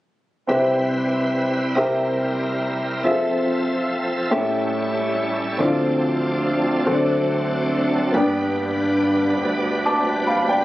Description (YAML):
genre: gospel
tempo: 47 BPM (dotted quarters)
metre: 6/8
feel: straight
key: C major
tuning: A4 = 440 Hz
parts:
  - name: clear baby grand piano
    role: accompaniment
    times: 0.5-10.6 s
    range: G2 to D6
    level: -21 LUFS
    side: left 1 dB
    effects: none
  - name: bright tonewheel organ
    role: sustained chords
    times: 0.5-10.6 s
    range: F3 to E5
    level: -24 LUFS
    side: right 1 dB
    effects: slow rotary speaker, overdrive, chorus vibrato
  - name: warm bass clarinet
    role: bass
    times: 5.6-10.6 s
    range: D2 to G2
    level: -24 LUFS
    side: equal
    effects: none
room: light reverb, small room ambience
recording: recorded on a phone in the room, studio ambience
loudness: -18 LUFS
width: side -16 dB against mid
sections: 0.5-10.6 A section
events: none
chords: 0.5 Cmaj7; 1.8 C7; 3.0 Fmaj7; 4.3 A7; 5.6 Dm7; 6.9 D7; 8.1 G